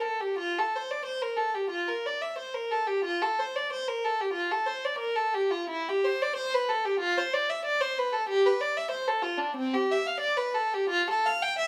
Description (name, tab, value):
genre	classical, baroque-style suite movement for unaccompanied violin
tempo	91 BPM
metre	4/4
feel	uneven beats, rubato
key	F major, C major from 5.7 s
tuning	A4 = 438 Hz
part	rich violin	solo	0.0-11.7 s	C4 to G5	-29 LUFS	equal	none
room	moderate stone room reverb, RT60 1.1 s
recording	none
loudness	-29 LUFS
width	mono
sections	0.0-11.7 A section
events	none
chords	none